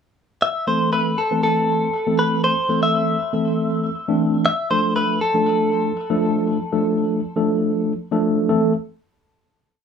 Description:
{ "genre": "pop", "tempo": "119 BPM", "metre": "4/4", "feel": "straight", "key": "A minor", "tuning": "A4 = 440 Hz", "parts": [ { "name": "direct-recorded clean electric guitar", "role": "melody", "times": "0.4-7.9 s", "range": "A4 to E5", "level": "-21 LUFS", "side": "left 1 dB", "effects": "vibrato effect, digital delay" }, { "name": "mellow tine electric piano", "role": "accompaniment", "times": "0.7-8.7 s", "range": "E3 to B4", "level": "-19 LUFS", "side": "equal", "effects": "medium stereo tremolo" } ], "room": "moderate booth ambience, RT60 0.2 s", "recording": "small room ambience", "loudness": "-17 LUFS", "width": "side -7 dB against mid", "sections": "0.4-8.5 build; 8.5-9.8 final chord", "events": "build-up 0.4-8.5", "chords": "0.4 Am; 4.5 Dm; 8.5 Am", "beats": "| 0.42 0.93 1.43 1.94 | 2.44 2.94 3.45 3.95 | 4.46 4.96 5.47 5.97 | 6.47 6.98 7.48 7.99 | 8.49" }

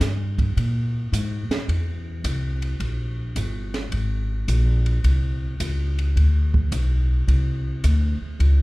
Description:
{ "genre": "jazz piano trio", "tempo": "107 BPM", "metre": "4/4", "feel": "swing 67% on 8ths", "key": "Ab major", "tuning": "A4 = 444 Hz", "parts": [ { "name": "upright bass", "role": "bass", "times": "0.0-8.6 s", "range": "G1 to Bb2", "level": "-20 LUFS", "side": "equal", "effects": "none" }, { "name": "compact cocktail drum kit", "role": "drums", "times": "0.0-8.6 s", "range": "hi-hat, kick drum, ride cymbal, snare drum", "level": "-28 LUFS", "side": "right 1 dB", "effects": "none" } ], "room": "light reverb", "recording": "none", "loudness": "-20 LUFS", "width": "side -21 dB against mid", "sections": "0.0-8.6 A section", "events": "none", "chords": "none", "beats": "0.00 0.56 1.12 | 1.68 2.24 2.80 3.36 | 3.92 4.49 5.04 5.61 | 6.17 6.73 7.29 7.85 | 8.41" }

